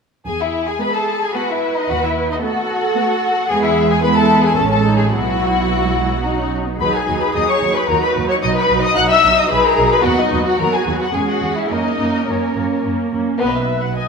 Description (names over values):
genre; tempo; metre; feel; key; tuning
quick classical-period movement for string orchestra; 110 BPM; 3/4; rubato; E major, B major from 6.8 s; A4 = 440 Hz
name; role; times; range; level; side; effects
muted studio violin section; melody; 0.3-14.1 s; C#5 to F#6; -20 LUFS; left 5 dB; none
muted chamber violin section; second line; 0.3-13.7 s; B3 to F#5; -20 LUFS; left 2 dB; none
muted studio double bass section; bass; 0.3-13.9 s; A1 to F#2; -23 LUFS; right 4 dB; none
muted studio viola section; accompaniment; 0.8-14.1 s; F#3 to D#5; -20 LUFS; right 2 dB; none
muted studio cello section; bass; 0.8-13.9 s; B2 to B4; -23 LUFS; right 3 dB; none
room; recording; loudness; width
wet scoring stage reverb, RT60 1.9 s; minimal, uncompressed stereo recording; -14 LUFS; side -5 dB against mid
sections
0.3-13.4 A section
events
none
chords
0.3 E; 1.9 B7/D#; 3.5 E; 4.6 Amaj7; 5.1 Bsus4; 6.2 B; 6.8 B69/D#; 8.4 B; 10.1 B/D#; 11.1 C#m; 11.7 F#; 13.4 B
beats
| 0.26 0.81 1.35 | 1.89 2.43 2.96 | 3.49 4.03 4.57 | 5.12 5.68 6.24 | 6.80 7.35 7.90 | 8.44 8.97 9.51 | 10.05 10.59 11.14 | 11.70 12.27 12.85 | 13.41 13.96